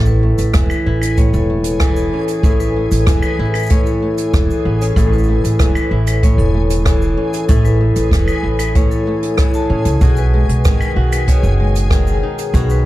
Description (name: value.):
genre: folktronica.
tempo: 95 BPM.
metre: 4/4.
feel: straight.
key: A lydian.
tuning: A4 = 440 Hz.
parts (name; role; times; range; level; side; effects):
flamenco guitar; arpeggios; 0.0-12.9 s; A2 to F#4; -20 LUFS; equal; vintage 12-bit sampler grit, tape echo.
upright bass; bass; 0.0-12.9 s; E1 to A2; -16 LUFS; equal; none.
backwards swelling texture; texture; 1.0-12.9 s; G#4 to G#5; -30 LUFS; left 1 dB; built-in reverb.
vibraphone with medium hard mallets; second line; 0.1-12.9 s; G#4 to A5; -22 LUFS; left 4 dB; tape echo.
jazz brush drum kit; drums; 0.1-12.8 s; cabasa, claves, hi-hat, rim click; -25 LUFS; right 1 dB; none.
kick drum; drums; 0.5-12.7 s; none; -16 LUFS; equal; none.
room: studio reverb.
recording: dark, warm production.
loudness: -12 LUFS.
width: side -16 dB against mid.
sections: 0.0-12.9 A section.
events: none.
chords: 0.0 A; 10.0 B6.